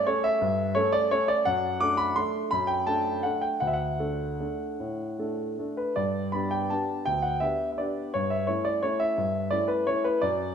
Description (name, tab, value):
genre	classical, piano waltz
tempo	149-183 BPM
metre	3/4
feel	rubato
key	unclear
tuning	A4 = 438 Hz
part	warm grand piano	solo	0.0-10.5 s	D2 to D6	-25 LUFS	equal	none
room	wet recital hall reverb, RT60 1.5 s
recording	minimal, uncompressed stereo recording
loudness	-25 LUFS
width	side -7 dB against mid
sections	0.0-10.5 A section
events	none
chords	0.0 A7/G; 1.4 D/F#; 3.6 D; 6.0 G; 8.1 A7/G